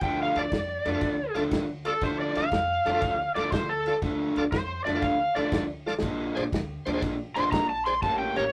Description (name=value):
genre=electric blues shuffle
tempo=120 BPM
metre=4/4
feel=swing 68% on 8ths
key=D minor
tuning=A4 = 440 Hz
part: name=overdriven slide guitar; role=second line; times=0.0-8.5 s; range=A4 to C6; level=-29 LUFS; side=equal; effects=none
part: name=overdriven semi-hollow guitar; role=riff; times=0.0-8.4 s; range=A2 to D4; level=-32 LUFS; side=equal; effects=none
part: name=upright bass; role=bass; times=0.0-8.5 s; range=A1 to F2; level=-42 LUFS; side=equal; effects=none
part: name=warm soul drum kit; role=drums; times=0.0-8.4 s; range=kick drum, ride cymbal, snare drum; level=-35 LUFS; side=equal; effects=none
part: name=bright tonewheel organ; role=accompaniment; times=0.4-8.4 s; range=F4 to D5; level=-34 LUFS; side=equal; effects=slow rotary speaker, overdrive
room=wet booth ambience, RT60 0.3 s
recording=rough rehearsal-room recording, tube saturation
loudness=-27 LUFS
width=mono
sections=0.0-8.5 A section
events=electric slide guitar solo 0.0-8.5; drum fill 5.8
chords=0.0 Dm; 6.0 Bb7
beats=| 0.02 0.52 1.02 1.52 | 2.02 2.52 3.02 3.52 | 4.02 4.52 5.02 5.52 | 6.02 6.52 7.02 7.52 | 8.02